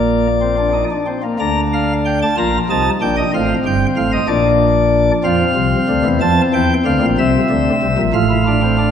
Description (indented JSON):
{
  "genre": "classical, baroque-style 3-part fugue for pipe organ",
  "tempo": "62 BPM (dotted quarters)",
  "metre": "6/8",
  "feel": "straight",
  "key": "Bb major",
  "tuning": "A4 = 439 Hz",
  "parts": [
    { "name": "pipe organ, sparkling flutes", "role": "solo", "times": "0.0-8.9 s", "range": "G1 to Bb5", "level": "-13 LUFS", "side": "equal", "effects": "none" }
  ],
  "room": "wet scoring stage reverb, RT60 1.8 s",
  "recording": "none",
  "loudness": "-13 LUFS",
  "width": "side -8 dB against mid",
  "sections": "0.0-1.4 A section; 1.4-8.9 B section",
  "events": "none",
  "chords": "0.0 Bb; 1.4 Bb/D; 2.4 Cm7/Bb; 3.3 F7; 4.3 Bb; 5.3 F5; 6.2 Gm7; 7.2 C7; 8.1 F/A",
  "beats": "0.40 | 1.39 2.37 | 3.34 4.30 | 5.26 6.22 | 7.18 8.13"
}